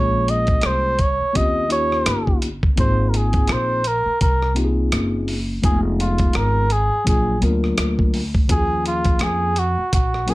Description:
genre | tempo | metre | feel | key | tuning
hip hop, jazz-hop | 84 BPM | 4/4 | swing 58% on 16ths | Eb minor | A4 = 440 Hz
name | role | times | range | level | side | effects
trumpet with cup mute | melody | 0.0-10.3 s | F4 to Eb5 | -21 LUFS | right 1 dB | none
mellow tine electric piano | accompaniment | 0.0-10.3 s | F3 to Bb4 | -24 LUFS | left 2 dB | none
upright bass | bass | 0.0-10.3 s | F1 to F2 | -22 LUFS | equal | none
dusty soul sampler-style drum kit | drums | 0.3-10.3 s | hi-hat, kick drum, rim click | -20 LUFS | equal | none
room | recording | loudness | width
light reverb | none | -17 LUFS | side -19 dB against mid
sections
0.0-10.3 A section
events
none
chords
0.0 Bbm9; 1.4 Eb13; 2.8 Ab69; 5.6 Fm7b5; 7.1 Bb7b13; 8.5 Ebm11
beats
0.64 1.35 2.07 | 2.78 3.50 4.21 4.92 | 5.64 6.35 7.07 7.78 | 8.49 9.21 9.92

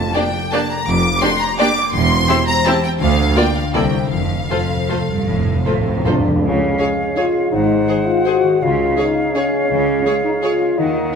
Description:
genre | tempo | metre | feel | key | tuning
classical | 146-181 BPM | 3/4 | rubato | F major, Db major from 6.4 s | A4 = 443 Hz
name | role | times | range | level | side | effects
clear studio violin section | melody | 0.0-10.5 s | F5 to D6 | -21 LUFS | left 2 dB | none
concert harp | arpeggios | 0.0-11.2 s | Ab2 to D5 | -25 LUFS | left 7 dB | none
clear symphonic cello section | bass | 0.0-11.1 s | C2 to Eb3 | -24 LUFS | right 3 dB | none
rich symphonic double bass section | bass | 0.0-11.1 s | E1 to Eb2 | -23 LUFS | right 4 dB | none
timpani | percussion | 0.0-0.3, 4.1-6.4 s | F2 | -23 LUFS | right 1 dB | none
warm symphonic violin section | second line | 0.1-11.2 s | G4 to D5 | -24 LUFS | left 2 dB | none
clear symphonic viola section | accompaniment | 0.2-10.5 s | A3 to Ab4 | -24 LUFS | right 2 dB | none
mellow French horn section | sustained chords | 5.9-11.1 s | Ab3 to Gb4 | -18 LUFS | left 3 dB | none
mellow clarinet | second line | 6.4-11.2 s | C5 to Eb5 | -26 LUFS | left 1 dB | none
silver concert flute | second line | 6.4-11.2 s | F5 to Gb5 | -24 LUFS | left 1 dB | none
mellow bassoon | accompaniment | 6.4-11.2 s | Ab3 to Bb3 | -23 LUFS | right 3 dB | none
room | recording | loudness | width
wet recital hall reverb, RT60 1.4 s | minimal, uncompressed stereo recording | -14 LUFS | side -6 dB against mid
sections
0.0-6.4 A section; 6.4-11.2 B section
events
timpani fill 4.1-6.4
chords
0.0 Gm7/F; 1.9 C/E; 3.0 Bb/D; 3.7 C9; 4.1 F; 6.4 Db; 7.5 Ab7; 8.6 Db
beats
0.15 0.52 | 0.87 1.22 1.59 | 1.94 2.29 2.67 | 3.01 3.37 3.75 | 4.12 4.51 4.91 | 5.28 5.67 6.06 | 6.44 6.80 7.17 | 7.53 7.89 8.27 | 8.62 8.98 9.35 | 9.71 10.06 10.44 | 10.79 11.14

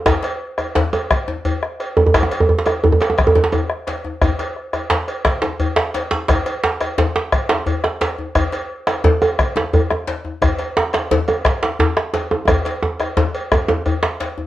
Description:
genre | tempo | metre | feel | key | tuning
west african traditional, West African drum ensemble | 116 BPM (dotted quarters) | 12/8 | straight | none | none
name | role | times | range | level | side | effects
bombo | percussion | 0.1-14.2 s | none | -19 LUFS | left 2 dB | none
cowbell | percussion | 0.1-14.4 s | none | -26 LUFS | right 2 dB | none
djembe | percussion | 0.1-14.5 s | none | -21 LUFS | left 3 dB | none
djembe | percussion | 0.1-14.2 s | none | -17 LUFS | right 2 dB | none
room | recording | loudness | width
moderate studio reverb, RT60 0.6 s | worn, warbling old tape, cassette tape, warbly pitch drift | -16 LUFS | side -14 dB against mid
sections
0.0-14.5 A section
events
drum fill 12.5-14.5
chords
none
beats
| 0.06 0.58 1.10 1.62 | 2.14 2.66 3.18 3.69 | 4.21 4.73 5.25 5.77 | 6.29 6.80 7.32 7.84 | 8.36 8.87 9.39 9.90 | 10.42 10.94 11.45 11.97 | 12.49 13.00 13.52 14.03

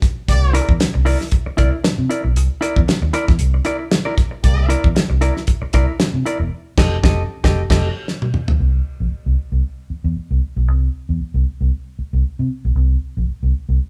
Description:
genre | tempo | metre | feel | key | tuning
funk | 115 BPM | 4/4 | swing 56% on 16ths | C mixolydian | A4 = 439 Hz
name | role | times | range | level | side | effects
damped 70s drum kit | drums | 0.0-8.6 s | crash cymbal, hi-hat, kick drum, snare drum, toms | -19 LUFS | equal | none
clear horn section | second line | 0.3-0.6, 4.4-4.7 s | Bb3 to D5 | -27 LUFS | equal | none
vintage muted fingered electric bass | bass | 0.3-13.8 s | E1 to C3 | -20 LUFS | equal | none
semi-hollow electric guitar | accompaniment | 0.5-7.9 s | E4 to Eb5 | -25 LUFS | equal | none
room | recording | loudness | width
moderate large studio reverb, RT60 0.9 s | band playing live in one room | -18 LUFS | mono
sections
0.0-8.6 A section; 8.6-13.9 B section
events
break 0.0; band accent 6.5-8.6; drum fill 8.1-8.6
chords
0.3 C9; 6.5 F9; 8.6 N.C.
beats
| 0.29 0.81 1.32 1.84 | 2.36 2.88 3.40 3.92 | 4.44 4.96 5.48 6.00 | 6.52 7.04 7.56 8.08 | 8.60 9.12 9.64 10.16 | 10.68 11.21 11.73 12.25 | 12.77 13.29

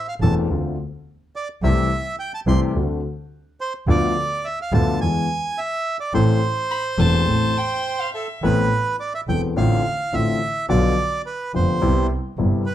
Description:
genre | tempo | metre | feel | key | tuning
tango | 106 BPM | 4/4 | rubato | A minor | A4 = 439 Hz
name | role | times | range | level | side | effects
bandoneon | melody | 0.0-12.7 s | A4 to C6 | -24 LUFS | right 3 dB | none
warm grand piano | accompaniment | 0.2-12.6 s | E1 to A4 | -21 LUFS | left 3 dB | none
dark double bass | bass | 0.2-12.6 s | E1 to E2 | -21 LUFS | right 2 dB | none
clear violin | second line | 6.7-8.4 s | E5 to B5 | -27 LUFS | left 1 dB | none
room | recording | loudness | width
light reverb | dark, warm production | -18 LUFS | side -12 dB against mid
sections
0.0-8.4 A section; 8.4-12.7 A section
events
none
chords
0.5 Dm7; 1.6 Am7/C; 2.8 D7; 3.9 Bdim/D; 5.0 E; 6.1 Am; 8.4 Amadd9; 9.6 Dm7/A; 10.7 Bdim; 11.8 Cmaj7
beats
0.50 1.06 | 1.63 2.19 2.75 3.32 | 3.88 4.45 5.01 5.58 | 6.14 6.71 7.28 7.85 | 8.43 9.00 9.57 10.13 | 10.69 11.26 11.82 12.38

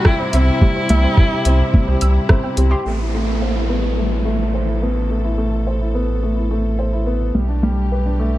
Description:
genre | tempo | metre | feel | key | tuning
piano and strings electronica | 107 BPM | 4/4 | straight | A minor | A4 = 440 Hz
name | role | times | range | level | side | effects
rich viola | melody | 0.0-2.3 s | E4 | -22 LUFS | equal | tape echo
bright symphonic string section | sustained chords | 0.0-8.4 s | B2 to A4 | -29 LUFS | left 1 dB | none
felt-muted upright piano | riff | 0.0-8.4 s | G3 to G5 | -21 LUFS | left 1 dB | low-pass filter, tape echo
deep house drum kit | drums | 0.0-2.7 s | hi-hat, rim click | -22 LUFS | equal | overdrive, low-pass filter on hats, low-pass filter on snare
electronic kick drum | drums | 0.1-2.4 s | none | -13 LUFS | equal | none
soft round pluck | arpeggios | 0.2-2.8 s | G4 to E6 | -29 LUFS | right 1 dB | chorus, sidechain pumping, tape echo
warm sub bass | bass | 0.3-8.4 s | A1 to C2 | -18 LUFS | equal | sidechain pumping
downlifter | sound effects | 2.9-7.3 s | none | -28 LUFS | right 1 dB | none
room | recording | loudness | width
little or no reverb | dark, warm production | -15 LUFS | side -15 dB against mid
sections
0.0-2.9 A section; 2.9-8.4 B section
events
drop 0.0-2.9; fade-in on string section 2.9-8.4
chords
0.0 C; 2.9 Amadd9; 7.3 Gadd9/B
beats
0.05 | 0.61 1.18 1.74 2.30 | 2.86 3.42 3.98 4.54 | 5.10 5.66 6.22 6.78 | 7.34 7.90

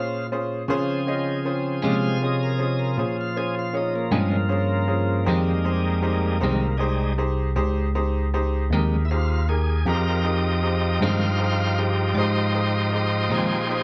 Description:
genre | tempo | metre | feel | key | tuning
slow blues | 52 BPM (dotted quarters) | 12/8 | straight | F minor | A4 = 439 Hz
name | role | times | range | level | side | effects
bright concert grand piano | accompaniment | 0.0-13.8 s | Db4 to Eb5 | -30 LUFS | equal | none
bright tonewheel organ | sustained chords | 0.0-13.8 s | Db3 to F5 | -29 LUFS | equal | slow rotary speaker
bell-like tine electric piano | bass | 0.0-13.8 s | C2 to Db3 | -26 LUFS | equal | none
clean electric guitar | accompaniment | 1.8-13.6 s | F2 to Db4 | -28 LUFS | equal | tremolo
room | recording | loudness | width
light reverb | small room ambience | -23 LUFS | mono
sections
0.0-13.8 A section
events
tonewheel organ solo 0.0-13.8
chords
0.0 Bbm7; 5.3 Fm7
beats
| 0.70 1.84 2.99 4.13 | 5.28 6.43 7.58 8.72 | 9.87 11.02 12.17 13.31

